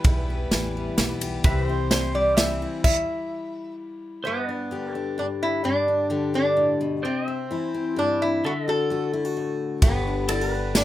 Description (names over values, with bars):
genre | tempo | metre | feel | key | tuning
honky-tonk and classic country | 129 BPM | 3/4 | straight | G major | A4 = 440 Hz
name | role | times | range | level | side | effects
lap resonator guitar | melody | 0.0-10.8 s | B3 to E5 | -25 LUFS | right 1 dB | none
picked steel-string acoustic guitar | accompaniment | 0.0-10.8 s | E2 to G4 | -28 LUFS | left 4 dB | none
pedal steel guitar | sustained chords | 0.0-10.8 s | A4 to E5 | -32 LUFS | equal | none
warm studio violin section | sustained chords | 0.0-2.8, 9.8-10.8 s | G3 to C5 | -38 LUFS | right 1 dB | none
upright bass | bass | 0.0-2.6, 9.8-10.8 s | G1 to C2 | -28 LUFS | right 1 dB | none
natural country drum kit | drums | 0.0-3.0, 9.8-10.8 s | crash cymbal, kick drum, ride cymbal, snare drum | -21 LUFS | right 1 dB | none
room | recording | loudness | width
little or no reverb | rough home demo mix | -22 LUFS | side -14 dB against mid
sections
0.0-4.2 A section; 4.2-10.8 B section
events
resonator guitar played with a steel bar solo 0.0-4.2; stop 2.9-4.2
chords
0.0 Em; 1.5 C; 4.2 G; 7.0 C; 8.4 D; 9.8 G